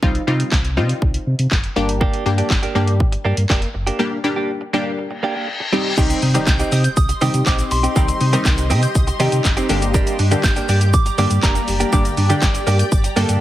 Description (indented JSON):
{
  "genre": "dance-pop",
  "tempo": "121 BPM",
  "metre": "4/4",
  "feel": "straight",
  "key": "C minor",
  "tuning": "A4 = 440 Hz",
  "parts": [
    { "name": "punchy chord stab", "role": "accompaniment", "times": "0.0-13.4 s", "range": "D3 to Bb4", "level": "-22 LUFS", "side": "left 1 dB", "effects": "chorus, sidechain pumping" },
    { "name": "sub bass with octave", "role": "bass", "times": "0.0-13.4 s", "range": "F1 to C3", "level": "-19 LUFS", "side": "equal", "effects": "sidechain pumping" },
    { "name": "house drum kit", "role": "drums", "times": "0.0-13.4 s", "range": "crash cymbal, handclaps, hi-hat, kick drum, shaker, snare drum", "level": "-19 LUFS", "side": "equal", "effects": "none" },
    { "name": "direct-recorded clean electric guitar", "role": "riff", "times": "2.0-13.4 s", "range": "Bb3 to G4", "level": "-24 LUFS", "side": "right 4 dB", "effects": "lush chorus" },
    { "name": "reverse cymbal and impact", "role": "sound effects", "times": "5.2-8.0 s", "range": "none", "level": "-27 LUFS", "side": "left 3 dB", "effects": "none" },
    { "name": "granular cloud pad", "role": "sustained chords", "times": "6.9-13.4 s", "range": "G4 to C6", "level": "-27 LUFS", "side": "equal", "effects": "built-in reverb, sidechain pumping" },
    { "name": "glassy wavetable pluck", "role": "arpeggios", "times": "6.0-13.2 s", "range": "G3 to G6", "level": "-28 LUFS", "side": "left 1 dB", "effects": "chorus, sidechain pumping, digital delay" },
    { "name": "egg shaker", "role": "percussion", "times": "6.0-13.4 s", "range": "none", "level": "-36 LUFS", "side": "left 8 dB", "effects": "none" },
    { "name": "soft synth bell", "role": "melody", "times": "6.5-12.6 s", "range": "Bb5 to G6", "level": "-25 LUFS", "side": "right 2 dB", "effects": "chorus, phaser, digital delay" }
  ],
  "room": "light reverb",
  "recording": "heavily compressed radio sound",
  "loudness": "-15 LUFS",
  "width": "side -14 dB against mid",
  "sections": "0.0-6.0 A section; 6.0-13.4 B section",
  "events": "break 4.0-6.0; reverse cymbal 5.2-6.0; impact 6.0-8.0",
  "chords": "0.0 Cm; 1.8 Gm; 5.7 Cm; 9.7 Gm"
}